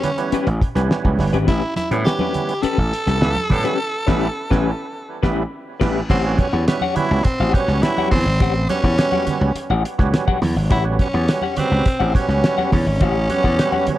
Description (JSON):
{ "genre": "funk", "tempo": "104 BPM", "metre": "4/4", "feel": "straight", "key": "A mixolydian", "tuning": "A4 = 441 Hz", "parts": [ { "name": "growling tenor saxophone", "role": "melody", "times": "0.0-14.0 s", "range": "C4 to A4", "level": "-23 LUFS", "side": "equal", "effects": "none" }, { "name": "semi-hollow electric guitar", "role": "accompaniment", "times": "0.0-13.9 s", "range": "C#4 to F#5", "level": "-25 LUFS", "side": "left 9 dB", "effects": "tremolo" }, { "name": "overdriven tonewheel organ", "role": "stabs", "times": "0.0-14.0 s", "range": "C#3 to B4", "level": "-25 LUFS", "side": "right 5 dB", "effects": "chorus vibrato, tape echo" }, { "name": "cloth-damped thuddy drum kit", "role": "drums", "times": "0.0-14.0 s", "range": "crash cymbal, hi-hat, kick drum, snare drum", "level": "-20 LUFS", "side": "equal", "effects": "none" }, { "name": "congas", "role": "percussion", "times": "0.0-14.0 s", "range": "none", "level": "-28 LUFS", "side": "right 4 dB", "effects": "none" }, { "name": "gritty slap bass", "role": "bass", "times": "0.3-13.9 s", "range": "G1 to A2", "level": "-20 LUFS", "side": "equal", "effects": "overdrive" } ], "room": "light reverb, studio reverb", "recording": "dark, warm production", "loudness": "-16 LUFS", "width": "side -14 dB against mid", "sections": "0.0-6.1 A section; 6.1-14.0 B section", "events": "band accent 3.8-6.1", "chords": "0.0 A9; 6.1 A13", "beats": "0.33 0.91 | 1.48 2.06 2.64 3.21 | 3.79 4.37 4.95 5.52 | 6.10 6.67 7.25 7.83 | 8.40 8.98 9.55 10.13 | 10.71 11.28 11.86 12.44 | 13.01 13.59" }